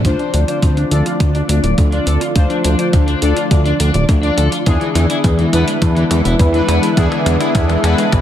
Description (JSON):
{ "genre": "synthwave", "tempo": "104 BPM", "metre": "4/4", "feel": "straight", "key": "unclear", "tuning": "A4 = 439 Hz", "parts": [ { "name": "lush unison pad", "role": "sustained chords", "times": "0.0-8.2 s", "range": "D3 to F4", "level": "-20 LUFS", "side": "equal", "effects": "chorus, sidechain pumping, shimmer reverb" }, { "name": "fat analog bass", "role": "bass", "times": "0.0-8.2 s", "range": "D1 to E2", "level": "-15 LUFS", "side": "equal", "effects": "sidechain pumping" }, { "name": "electronic kick drum", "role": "drums", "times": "0.0-8.2 s", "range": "none", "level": "-14 LUFS", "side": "equal", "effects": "none" }, { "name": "gated 80s digital drum machine", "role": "drums", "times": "0.0-8.2 s", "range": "hi-hat, toms", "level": "-25 LUFS", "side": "equal", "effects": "gated reverb, high-pass filter on hats, high-pass filter on snare, high-pass filter on toms" }, { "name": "analog synth brass", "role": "stabs", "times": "0.1-8.2 s", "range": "D4 to D5", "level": "-20 LUFS", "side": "left 3 dB", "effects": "chorus, digital delay, shimmer reverb" }, { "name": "overdriven semi-hollow guitar", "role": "riff", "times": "0.2-8.0 s", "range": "E3 to D5", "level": "-22 LUFS", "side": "left 2 dB", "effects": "wide subtle chorus, low-pass filter, digital delay, shimmer reverb" } ], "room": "light reverb, digital ambience", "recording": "none", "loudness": "-12 LUFS", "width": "side -10 dB against mid", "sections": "0.0-8.2 A section", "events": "drum fill 0.0-8.2; filter sweep on analog synth pad 0.0-8.2; filter sweep on analog polysynth 0.0-8.2; filter sweep on overdriven electric guitar 0.0-8.2", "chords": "0.0 Dm7; 4.7 E7", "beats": "| 0.05 0.63 1.20 1.78 | 2.36 2.93 3.51 4.09 | 4.67 5.24 5.82 6.39 | 6.97 7.55 8.13" }